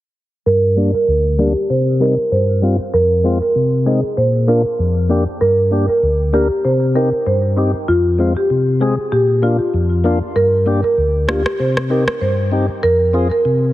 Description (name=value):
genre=dancehall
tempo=97 BPM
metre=4/4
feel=swing 56% on 16ths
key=G phrygian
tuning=A4 = 440 Hz
part: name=marimba with medium mallets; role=melody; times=0.5-13.5 s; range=F4 to C5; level=-16 LUFS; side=right 1 dB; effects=low-pass filter, tape echo
part: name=tonewheel organ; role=accompaniment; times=0.5-13.7 s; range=D2 to Bb4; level=-16 LUFS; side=left 1 dB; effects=slow rotary speaker, low-pass filter
part: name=electronic rim click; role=drums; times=11.3-12.2 s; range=none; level=-22 LUFS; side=equal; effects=none
room=light reverb, small room ambience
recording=heavily compressed radio sound, multiband compression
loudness=-13 LUFS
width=side -15 dB against mid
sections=0.5-13.7 A section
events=filter sweep 0.5-13.7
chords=0.5 Gm; 1.7 C5; 2.9 Fm; 4.2 Bb; 5.4 Gm; 6.6 Cm; 7.9 Fm; 9.1 Bb; 10.4 Gm; 11.6 Cm; 12.8 Fm